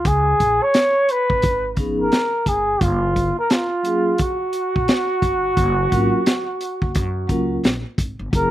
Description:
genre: hip hop, jazz-hop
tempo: 87 BPM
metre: 4/4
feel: swing 62% on 16ths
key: F# major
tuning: A4 = 440 Hz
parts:
  - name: trumpet with bucket mute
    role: melody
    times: 0.0-8.5 s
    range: E#4 to C#5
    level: -19 LUFS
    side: equal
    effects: slapback echo
  - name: crunchy breakbeat drum kit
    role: drums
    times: 0.0-8.5 s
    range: hi-hat, kick drum, snare drum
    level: -20 LUFS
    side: equal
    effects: none
  - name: upright bass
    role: bass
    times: 0.1-8.5 s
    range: F#1 to F#2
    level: -24 LUFS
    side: equal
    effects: none
  - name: vibraphone with soft mallets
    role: accompaniment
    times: 1.8-8.5 s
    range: E#3 to A#4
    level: -22 LUFS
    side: equal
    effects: none
room: little or no reverb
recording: recorded outdoors, with no room sound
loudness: -17 LUFS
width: side -13 dB against mid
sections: 0.0-8.3 A section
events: none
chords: 0.1 C#7(no3); 2.8 F#maj9

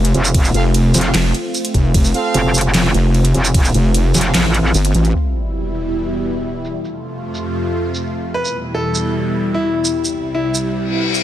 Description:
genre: heavy wobble dubstep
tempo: 150 BPM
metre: 4/4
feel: half-time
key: unclear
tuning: A4 = 437 Hz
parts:
  - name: supersaw pad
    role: sustained chords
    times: 0.0-11.2 s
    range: C2 to F4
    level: -21 LUFS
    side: equal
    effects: phaser, sidechain pumping, low-pass filter
  - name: wobble bass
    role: bass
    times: 0.0-5.1 s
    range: F1 to A1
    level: -14 LUFS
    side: equal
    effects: chorus, overdrive
  - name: dubstep drum kit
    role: drums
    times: 0.0-11.2 s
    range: handclaps, hi-hat, ride cymbal, shaker, snare drum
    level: -20 LUFS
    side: right 1 dB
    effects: overdrive, low-pass filter on hats, low-pass filter on cymbals, low-pass filter on perc, low-pass filter on snare, low-pass filter on room
  - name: metallic wobble bass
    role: bass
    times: 0.1-4.7 s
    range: F1 to A1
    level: -15 LUFS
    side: equal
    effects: chorus, overdrive
  - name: electronic kick drum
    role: drums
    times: 0.3-3.6 s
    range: none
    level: -14 LUFS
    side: equal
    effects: overdrive
  - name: clear brass ensemble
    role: stabs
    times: 0.5-4.4 s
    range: C4 to F5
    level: -24 LUFS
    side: right 4 dB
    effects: vintage 12-bit sampler grit, digital delay
  - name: sub drop and reverse cymbal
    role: sound effects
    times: 5.1-6.7, 10.9-11.2 s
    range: none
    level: -22 LUFS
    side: left 1 dB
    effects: none
  - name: bright grand piano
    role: melody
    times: 8.3-11.2 s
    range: E4 to B4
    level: -20 LUFS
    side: left 1 dB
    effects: digital delay
room: light reverb, digital ambience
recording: none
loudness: -14 LUFS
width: side -12 dB against mid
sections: 0.0-5.1 A section; 5.1-11.2 B section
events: drop 0.0-5.1; kick drops out 4.7-5.1; impact 5.1-6.7; filter sweep on drum 5.1-11.2; reverse cymbal 10.9-11.2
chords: 0.0 F; 5.1 Em; 6.7 F; 8.3 Em; 9.9 C

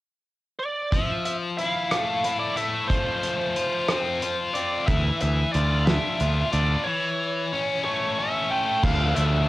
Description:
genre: indie rock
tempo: 61 BPM (dotted quarters)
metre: 6/8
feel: straight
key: unclear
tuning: A4 = 440 Hz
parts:
  - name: biting lead guitar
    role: melody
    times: 0.6-9.5 s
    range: C5 to G5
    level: -27 LUFS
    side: right 2 dB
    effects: overdrive, cassette tape
  - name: high-gain distorted guitar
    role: riff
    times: 0.9-9.5 s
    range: E3 to F4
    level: -26 LUFS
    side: left 4 dB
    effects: distortion, cassette tape
  - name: loose indie drum kit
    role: drums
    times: 0.9-9.3 s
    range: crash cymbal, hi-hat, kick drum, rim click, snare drum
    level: -27 LUFS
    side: equal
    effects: cassette tape
  - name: growling picked electric bass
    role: bass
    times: 4.9-9.4 s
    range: D2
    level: -23 LUFS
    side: right 1 dB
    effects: overdrive
room: light reverb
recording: home recording on cassette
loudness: -22 LUFS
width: side -17 dB against mid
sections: 0.9-8.8 A section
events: break 6.9-8.8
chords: 0.0 N.C.; 0.9 Fmaj7; 2.9 F5; 4.9 Dmadd9; 6.9 A; 8.8 Dm

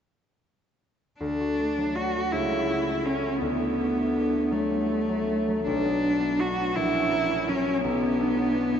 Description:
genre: classical, romantic duo for cello and harp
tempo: 55 BPM (dotted quarters)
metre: 6/8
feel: rubato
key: D major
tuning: A4 = 440 Hz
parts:
  - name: rich cello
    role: melody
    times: 1.2-8.8 s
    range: A3 to F#4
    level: -25 LUFS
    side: equal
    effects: none
  - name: concert harp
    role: accompaniment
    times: 1.2-8.8 s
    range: A#1 to F#4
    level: -28 LUFS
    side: equal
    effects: none
room: wet huge ambient reverb, RT60 8.0 s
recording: in a vast, echoing space, nothing above 7.9 kHz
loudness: -23 LUFS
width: side -8 dB against mid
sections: 1.2-8.8 A section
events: none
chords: 1.2 D; 2.3 A/C#; 3.4 D; 5.7 Bm; 6.8 F#7/A#; 7.9 Bm

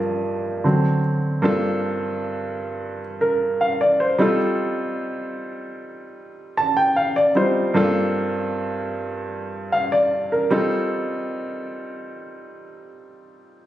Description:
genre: R&B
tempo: 76 BPM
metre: 4/4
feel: straight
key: G minor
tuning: A4 = 440 Hz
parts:
  - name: warm baby grand piano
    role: solo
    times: 0.0-13.7 s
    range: G2 to A5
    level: -20 LUFS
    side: equal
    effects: none
room: light reverb, small room ambience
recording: recorded on a phone in the room, studio reverb, compression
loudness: -19 LUFS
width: side -12 dB against mid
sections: 0.0-1.4 A section; 1.4-13.7 B section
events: grand piano solo 0.0-1.4; grand piano fill 6.2-7.7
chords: 0.0 Gm7; 0.6 D7; 1.4 Gm11; 4.2 F9; 7.7 Gm11; 10.5 F9

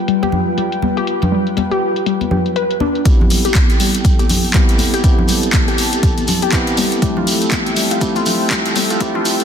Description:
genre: deep house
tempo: 121 BPM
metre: 4/4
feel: swing 59% on 16ths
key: A minor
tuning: A4 = 436 Hz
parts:
  - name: warm analog pad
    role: sustained chords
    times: 0.0-9.4 s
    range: F3 to A5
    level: -24 LUFS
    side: right 2 dB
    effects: chorus, sidechain pumping
  - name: warbly dusty pluck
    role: arpeggios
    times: 0.1-9.2 s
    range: G3 to B4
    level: -20 LUFS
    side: left 2 dB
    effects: chorus, phaser, sidechain pumping, digital delay
  - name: punchy analog drum machine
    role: drums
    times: 0.1-9.4 s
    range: handclaps, hi-hat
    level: -20 LUFS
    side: left 2 dB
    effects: overdrive, low-pass filter on hats, low-pass filter on snare
  - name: congas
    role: percussion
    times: 0.2-9.2 s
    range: none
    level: -22 LUFS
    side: left 1 dB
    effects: none
  - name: bright tine electric piano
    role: stabs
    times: 3.1-9.4 s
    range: A3 to G4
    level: -20 LUFS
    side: equal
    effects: low-pass filter, tape echo
  - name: electronic kick drum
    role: drums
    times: 3.1-9.1 s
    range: none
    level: -15 LUFS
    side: equal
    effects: overdrive
  - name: shekere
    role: percussion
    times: 3.1-9.4 s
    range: none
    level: -25 LUFS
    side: right 3 dB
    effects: none
room: moderate lush hall reverb, RT60 1.7 s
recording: dense, heavily limited modern master, high-pass filter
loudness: -13 LUFS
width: side -8 dB against mid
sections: 0.0-3.1 A section; 3.1-9.4 B section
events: build-up 3.1-9.4; filter sweep 3.1-9.4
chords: 0.0 G7; 3.1 Am7; 7.0 Fmaj9

